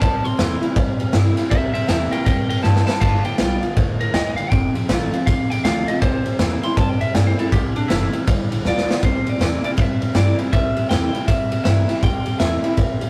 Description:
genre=rockabilly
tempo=160 BPM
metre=4/4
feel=swing 63% on 8ths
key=C mixolydian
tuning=A4 = 442 Hz
part: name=electric guitar at the edge of break-up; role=melody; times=0.0-13.1 s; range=D4 to C6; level=-28 LUFS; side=equal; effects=slapback echo
part: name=picked steel-string acoustic guitar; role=accompaniment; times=0.0-13.1 s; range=F2 to F4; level=-28 LUFS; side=equal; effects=none
part: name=electric guitar through a small old amp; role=riff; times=0.0-13.1 s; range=F2 to A3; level=-28 LUFS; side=equal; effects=none
part: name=upright bass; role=bass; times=0.0-13.1 s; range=F1 to G2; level=-25 LUFS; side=equal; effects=none
part: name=raw garage drum kit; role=drums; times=0.0-13.1 s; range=crash cymbal, kick drum, ride cymbal, snare drum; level=-22 LUFS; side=equal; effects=none
room=moderate booth ambience, RT60 0.2 s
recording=rough rehearsal-room recording, warm saturation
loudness=-19 LUFS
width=mono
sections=0.0-9.0 A section; 9.0-13.1 B section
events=clean electric guitar solo 0.0-9.0; drum fill 2.6-3.0, 8.6-9.0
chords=0.0 C7; 3.0 G7; 4.5 F7; 6.0 C7; 8.3 G7; 9.0 C7

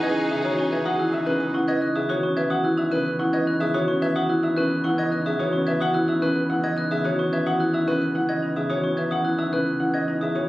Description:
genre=classical, minimalist pattern music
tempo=109 BPM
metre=3/4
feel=straight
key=E major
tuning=A4 = 441 Hz
part: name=warm concert grand piano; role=melody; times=0.0-10.5 s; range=B4 to F#5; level=-27 LUFS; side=left 2 dB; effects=none
part: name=concert harp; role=accompaniment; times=0.0-10.5 s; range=C#3 to G#3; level=-30 LUFS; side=equal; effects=none
part: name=rich symphonic violin section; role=sustained chords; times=0.0-1.5 s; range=D#4 to G#4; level=-30 LUFS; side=left 1 dB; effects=none
part: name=glockenspiel with soft plastic mallets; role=arpeggios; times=0.0-10.5 s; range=C#6 to G#6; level=-30 LUFS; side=right 1 dB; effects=none
part: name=marimba with medium mallets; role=arpeggios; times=0.0-10.5 s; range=C#4 to B4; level=-24 LUFS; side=right 1 dB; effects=none
part: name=rich double bass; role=bass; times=0.0-10.5 s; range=E2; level=-30 LUFS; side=equal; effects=none
part: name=warm French horn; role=second line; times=0.1-1.5 s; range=G#4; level=-34 LUFS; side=equal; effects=none
room=moderate recital hall reverb, RT60 1.6 s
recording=recorded on a phone in the room, club reverb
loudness=-21 LUFS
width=side -16 dB against mid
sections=0.0-10.5 A section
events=none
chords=0.0 Emaj9

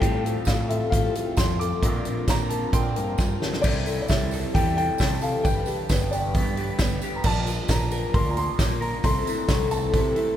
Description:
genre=folk rock and heartland rock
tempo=133 BPM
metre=4/4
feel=straight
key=C mixolydian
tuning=A4 = 440 Hz
part: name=dark baby grand piano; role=melody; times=0.0-10.4 s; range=D5 to D6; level=-30 LUFS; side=left 1 dB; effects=none
part: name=picked twelve-string acoustic guitar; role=accompaniment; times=0.0-10.4 s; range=A2 to B4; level=-30 LUFS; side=left 6 dB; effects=none
part: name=electric guitar through a small old amp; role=riff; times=0.0-10.4 s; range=G2 to Bb4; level=-30 LUFS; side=right 2 dB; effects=phaser
part: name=fingered electric bass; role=bass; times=0.0-10.3 s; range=G1 to C3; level=-29 LUFS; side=equal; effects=none
part: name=natural country drum kit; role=drums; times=0.0-10.3 s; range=crash cymbal, hi-hat, kick drum, snare drum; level=-25 LUFS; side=equal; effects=none
part: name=tambourine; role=percussion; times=0.5-10.0 s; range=none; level=-42 LUFS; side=right 6 dB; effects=none
part: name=bright upright piano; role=second line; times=2.3-3.2 s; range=G5 to C6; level=-37 LUFS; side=right 5 dB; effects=none
room=wet cathedral reverb, RT60 7.0 s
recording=recorded in a church or concert hall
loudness=-21 LUFS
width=side -11 dB against mid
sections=0.0-3.6 A section; 3.6-10.4 B section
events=drum fill 3.2-3.6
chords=0.0 Fadd9/A; 1.8 Bbadd9; 3.6 C6; 5.5 G; 7.2 Bb; 9.0 Am/C

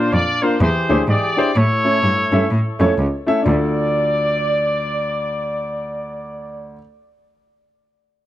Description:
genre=uptempo gospel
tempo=126 BPM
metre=4/4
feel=swing 62% on 8ths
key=D minor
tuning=A4 = 441 Hz
part: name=warm horn section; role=melody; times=0.0-6.8 s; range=D4 to D5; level=-20 LUFS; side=equal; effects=none
part: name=warm grand piano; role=accompaniment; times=0.0-6.8 s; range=D2 to F5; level=-20 LUFS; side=left 1 dB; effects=none
part: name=rich cello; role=bass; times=0.1-3.5 s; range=C#2 to A2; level=-18 LUFS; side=equal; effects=none
room=small room ambience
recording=dry, close 1970s-style studio recording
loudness=-16 LUFS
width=side -14 dB against mid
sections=0.0-3.4 A section; 3.4-7.2 B section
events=none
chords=0.0 Bb; 0.6 E7alt; 1.6 A; 3.4 Dm

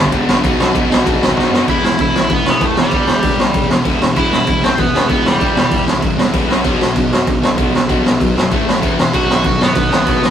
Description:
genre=punk rock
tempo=193 BPM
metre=4/4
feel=straight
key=E harmonic minor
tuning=A4 = 440 Hz
part: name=distorted electric guitar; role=riff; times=0.0-10.3 s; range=G2 to E4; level=-21 LUFS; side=left 6 dB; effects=distortion
part: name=distorted electric guitar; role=riff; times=0.0-10.3 s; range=E2 to B3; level=-24 LUFS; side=right 5 dB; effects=distortion
part: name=sludgy distorted guitar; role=riff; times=0.0-10.3 s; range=G2 to B4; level=-20 LUFS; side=equal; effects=overdrive
part: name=fuzz picked electric bass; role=bass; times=0.0-10.3 s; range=E1 to F#2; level=-23 LUFS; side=equal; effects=overdrive
part: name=raw garage drum kit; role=drums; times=0.0-10.3 s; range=crash cymbal, kick drum, ride cymbal, snare drum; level=-15 LUFS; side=right 1 dB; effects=none
part: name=biting overdriven guitar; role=melody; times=1.7-5.8, 9.1-10.3 s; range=G3 to F#4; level=-17 LUFS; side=equal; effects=none
room=light reverb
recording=rough rehearsal-room recording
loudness=-12 LUFS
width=side -9 dB against mid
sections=0.0-1.7 A section; 1.7-10.3 B section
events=drum fill 1.4-1.7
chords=0.4 B; 1.7 Em; 6.5 B5; 6.7 B; 8.5 A5; 8.8 E5; 9.1 B

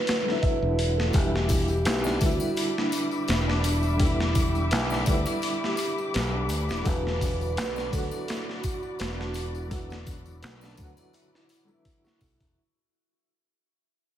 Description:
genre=trip hop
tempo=84 BPM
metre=4/4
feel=swing 54% on 16ths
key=unclear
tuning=A4 = 440 Hz
part: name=vibraphone with soft mallets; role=melody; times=0.0-12.4 s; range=D4 to B4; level=-32 LUFS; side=equal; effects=tape echo
part: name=dark upright piano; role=accompaniment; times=0.0-12.6 s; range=D3 to F#4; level=-32 LUFS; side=equal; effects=tremolo, tape echo
part: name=felt-muted upright piano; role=arpeggios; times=0.0-12.6 s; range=D4 to E5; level=-37 LUFS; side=right 4 dB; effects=vintage 12-bit sampler grit, tape echo
part: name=boom bap sampler-style drum kit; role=drums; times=0.1-12.6 s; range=hi-hat, kick drum, snare drum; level=-28 LUFS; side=equal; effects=none
part: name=fingered electric bass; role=bass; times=0.6-12.6 s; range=E1 to D2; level=-28 LUFS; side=equal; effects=none
part: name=muted studio string section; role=sustained chords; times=1.1-12.5 s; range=G3 to D6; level=-36 LUFS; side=left 4 dB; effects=vintage 12-bit sampler grit
part: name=tambourine and triangle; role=percussion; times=1.1-12.5 s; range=none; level=-42 LUFS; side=left 7 dB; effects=none
room=studio ambience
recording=none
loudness=-24 LUFS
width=side -11 dB against mid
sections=0.0-12.6 A section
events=fade-out 4.9-12.6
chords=0.0 Bm; 1.1 Em7; 6.9 Bm/E

